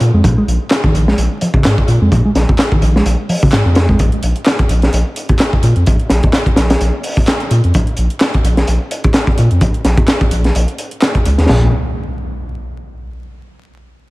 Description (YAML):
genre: breakbeat, breaks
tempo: 128 BPM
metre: 4/4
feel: swing 56% on 16ths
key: unclear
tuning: A4 = 440 Hz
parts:
  - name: saturated sub bass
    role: bass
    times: 0.0-11.7 s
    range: Bb1 to Bb2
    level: -13 LUFS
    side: equal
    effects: tube saturation
  - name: crunchy breakbeat drum kit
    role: drums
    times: 0.0-11.6 s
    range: hi-hat, kick drum, snare drum, splash cymbal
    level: -14 LUFS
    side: equal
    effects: none
  - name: picked electric bass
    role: riff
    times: 0.1-4.0, 11.5-11.7 s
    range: Ab2 to Ab3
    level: -16 LUFS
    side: equal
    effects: vintage 12-bit sampler grit, dub echo
  - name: punchy analog drum machine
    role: drums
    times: 0.7-11.5 s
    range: handclaps, hi-hat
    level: -25 LUFS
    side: equal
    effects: overdrive, dub echo
  - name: impact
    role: sound effects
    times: 11.6-13.4 s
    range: none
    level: -23 LUFS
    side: equal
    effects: none
room: studio ambience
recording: echo-heavy mix, vinyl crackle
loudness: -11 LUFS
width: side -20 dB against mid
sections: 0.0-11.5 A section; 11.5-13.4 B section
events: filter sweep on sub bass 0.0-11.5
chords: none